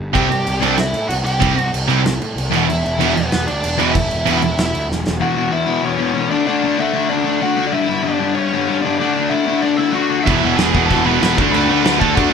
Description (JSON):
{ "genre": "punk rock", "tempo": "190 BPM", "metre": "4/4", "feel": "straight", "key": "unclear", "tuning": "A4 = 438 Hz", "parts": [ { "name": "fuzz picked electric bass", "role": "bass", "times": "0.0-5.2, 10.3-12.3 s", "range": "E1 to A2", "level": "-22 LUFS", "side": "equal", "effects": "overdrive" }, { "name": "biting lead guitar", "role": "melody", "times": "0.1-12.3 s", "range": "B3 to B5", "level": "-21 LUFS", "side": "equal", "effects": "overdrive" }, { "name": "overdriven semi-hollow guitar", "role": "riff", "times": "0.1-12.3 s", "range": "E2 to D4", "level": "-18 LUFS", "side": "left 7 dB", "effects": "none" }, { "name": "tight distorted guitar", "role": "riff", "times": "0.1-4.4, 10.3-12.3 s", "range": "E2 to D4", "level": "-18 LUFS", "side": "right 9 dB", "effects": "distortion" }, { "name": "loose indie drum kit", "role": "drums", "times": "0.2-5.1, 10.3-12.2 s", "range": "crash cymbal, kick drum, snare drum", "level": "-21 LUFS", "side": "right 1 dB", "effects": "none" } ], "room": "moderate large studio reverb, RT60 1.4 s", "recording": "band playing live in one room, lossy compression artefacts", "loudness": "-14 LUFS", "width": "side -6 dB against mid", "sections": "0.0-5.2 A section; 5.2-12.3 B section", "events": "half time 0.0-5.2; drum fill 4.9-5.2", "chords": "0.1 C; 2.5 E5; 6.3 D; 7.7 G5; 9.0 D; 10.3 E; 11.4 D" }